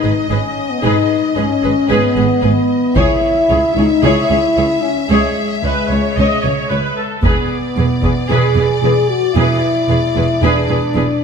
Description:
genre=cinematic, epic orchestral film score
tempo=113 BPM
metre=4/4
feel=straight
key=unclear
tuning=A4 = 442 Hz
part: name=clear symphonic violin section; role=melody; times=0.0-11.2 s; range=D5 to E5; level=-25 LUFS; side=left 5 dB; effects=none
part: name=dark symphonic violin section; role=second line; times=0.0-11.0 s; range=B4 to C#5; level=-23 LUFS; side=left 2 dB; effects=none
part: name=rich symphonic viola section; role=accompaniment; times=0.0-11.0 s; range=G#4 to D#5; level=-22 LUFS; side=equal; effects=none
part: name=dark French horn section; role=sustained chords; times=0.0-11.2 s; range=G#3 to G#4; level=-16 LUFS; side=left 2 dB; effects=none
part: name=rich symphonic cello section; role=bass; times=0.0-11.0 s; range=C#2 to G#2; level=-20 LUFS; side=right 3 dB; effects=none
part: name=warm symphonic double bass section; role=bass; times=0.0-11.0 s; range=E1 to C#2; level=-20 LUFS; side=right 4 dB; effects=none
part: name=taiko ensemble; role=drums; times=3.0-4.0, 7.2-8.3 s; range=none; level=-19 LUFS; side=equal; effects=none
room=wet scoring stage reverb, RT60 1.7 s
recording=none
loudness=-12 LUFS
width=side -6 dB against mid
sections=0.0-11.2 A section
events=none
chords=0.0 G#m; 3.0 C#madd9; 7.2 E7

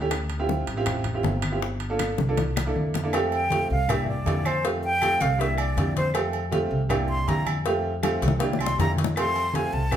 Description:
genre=Afro-Cuban jazz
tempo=159 BPM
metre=4/4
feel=straight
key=F major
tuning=A4 = 443 Hz
part: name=clear baby grand piano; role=accompaniment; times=0.0-10.0 s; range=A3 to A4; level=-28 LUFS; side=right 2 dB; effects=none
part: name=upright bass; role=bass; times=0.0-10.0 s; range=G1 to F2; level=-28 LUFS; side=equal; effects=none
part: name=bongos and cowbell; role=percussion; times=0.1-10.0 s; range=none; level=-31 LUFS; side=left 5 dB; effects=none
part: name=claves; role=percussion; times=0.1-10.0 s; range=none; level=-40 LUFS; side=left 4 dB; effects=none
part: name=congas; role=percussion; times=0.1-10.0 s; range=none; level=-31 LUFS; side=left 1 dB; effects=none
part: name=timbales and agogo bells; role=percussion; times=0.1-10.0 s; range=none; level=-34 LUFS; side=right 4 dB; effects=none
part: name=breathy concert flute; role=melody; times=3.3-9.9 s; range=C5 to C6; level=-26 LUFS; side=equal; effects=none
room=wet large studio reverb, RT60 0.9 s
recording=band playing live in one room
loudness=-22 LUFS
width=side -10 dB against mid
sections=0.0-3.1 A section; 3.1-10.0 B section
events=drum fill 2.0-3.1, 8.0-9.2; flute solo 3.1-10.0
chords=0.1 Dm11; 1.6 Gm9; 2.4 C13; 3.1 Fadd9; 3.9 C7; 4.6 Fadd9; 5.4 C7; 6.2 Fadd9; 6.9 C7; 7.7 Fadd9; 8.4 C7; 9.2 Fadd9

